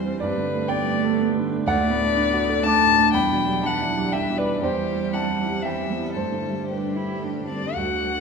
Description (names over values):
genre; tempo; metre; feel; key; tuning
neoclassical piano and strings; 112-124 BPM; 3/4; rubato; unclear; A4 = 441 Hz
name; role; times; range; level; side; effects
muted violin; melody; 0.0-8.2 s; G4 to A5; -24 LUFS; left 9 dB; none
muted cello; second line; 0.0-8.2 s; E3 to F#4; -27 LUFS; right 7 dB; none
dark concert grand piano; accompaniment; 0.0-8.2 s; D2 to D6; -25 LUFS; right 3 dB; none
granular cloud pad; sustained chords; 0.0-8.2 s; G3 to D5; -33 LUFS; left 1 dB; built-in reverb, phaser
room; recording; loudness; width
moderate concert hall reverb, RT60 1.9 s; minimal, uncompressed stereo recording; -20 LUFS; side -5 dB against mid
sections
0.0-7.8 A section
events
none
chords
0.2 Gadd9; 1.7 D; 3.1 Em7; 4.6 C/E; 6.2 Gadd9